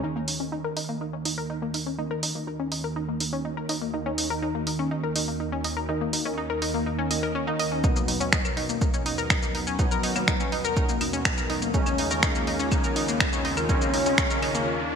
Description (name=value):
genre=melodic techno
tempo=123 BPM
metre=4/4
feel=straight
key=Eb minor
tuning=A4 = 439 Hz
part: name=warm analog pad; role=sustained chords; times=0.0-15.0 s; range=Eb2 to Db5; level=-37 LUFS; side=equal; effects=chorus, sidechain pumping
part: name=analog pluck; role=arpeggios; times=0.0-14.6 s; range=Bb3 to Eb5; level=-29 LUFS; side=left 3 dB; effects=chorus, sidechain pumping, ping-pong delay
part: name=sync-sweep polysynth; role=stabs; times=0.0-14.7 s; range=B2 to Eb4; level=-30 LUFS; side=right 2 dB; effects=chorus, sidechain pumping, ping-pong delay
part: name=punchy analog drum machine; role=drums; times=0.3-14.6 s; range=claves, finger snaps, hi-hat, shaker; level=-28 LUFS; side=right 1 dB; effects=gated reverb
part: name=electronic kick drum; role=drums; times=7.8-14.3 s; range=none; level=-26 LUFS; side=equal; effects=overdrive
part: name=riser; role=sound effects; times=10.7-15.0 s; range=none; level=-36 LUFS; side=equal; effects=none
room=wet lush hall reverb, RT60 1.8 s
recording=bright 1980s-style digital production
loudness=-23 LUFS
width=side -6 dB against mid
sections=0.0-15.0 A section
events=build-up 0.0-15.0; filter sweep on synth pluck 0.0-15.0; filter sweep on analog polysynth 0.0-15.0; filter sweep on analog synth pad 0.0-15.0; riser 10.7-15.0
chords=0.0 Ebm; 7.8 Badd9/D#; 11.7 Db/Eb